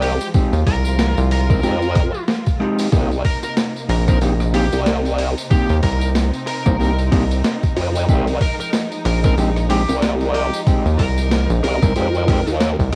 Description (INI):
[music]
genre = glitch hop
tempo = 93 BPM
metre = 4/4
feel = swing 58% on 16ths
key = unclear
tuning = A4 = 440 Hz
[part]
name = smooth overdriven lead guitar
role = melody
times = 0.0-12.5 s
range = G4 to Bb4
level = -30 LUFS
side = equal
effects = cassette tape, tape echo
[part]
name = dark chamber string section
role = sustained chords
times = 0.0-13.0 s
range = C3 to F4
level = -31 LUFS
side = equal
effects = sidechain pumping, cassette tape
[part]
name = formant-sweep wobble bass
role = bass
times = 0.0-12.8 s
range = C2 to F2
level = -21 LUFS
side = equal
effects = chorus, tube saturation
[part]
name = boom bap sampler-style drum kit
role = drums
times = 0.0-13.0 s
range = hi-hat, rim click, snare drum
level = -28 LUFS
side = equal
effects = overdrive, cassette tape
[part]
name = tambourine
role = percussion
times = 0.2-12.9 s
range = none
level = -37 LUFS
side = equal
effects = none
[part]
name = mellow electric guitar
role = stabs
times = 0.3-12.4 s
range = Ab3 to C5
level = -25 LUFS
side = equal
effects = sidechain pumping, cassette tape, tape echo
[part]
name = electronic kick drum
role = drums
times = 0.3-12.9 s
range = none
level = -20 LUFS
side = equal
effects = overdrive, cassette tape
[part]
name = rubbery square bass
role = bass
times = 0.5-13.0 s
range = Bb1 to Eb2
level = -20 LUFS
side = equal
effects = none
[sound]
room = little or no reverb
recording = home recording on cassette, vinyl crackle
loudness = -18 LUFS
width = mono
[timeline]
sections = 0.0-13.0 A section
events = none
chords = 0.0 Fm7; 2.9 Cm7; 8.1 Fm7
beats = | 0.34 0.99 1.64 2.28 | 2.92 3.57 4.22 4.86 | 5.51 6.15 6.80 7.44 | 8.09 8.73 9.38 10.02 | 10.67 11.31 11.96 12.60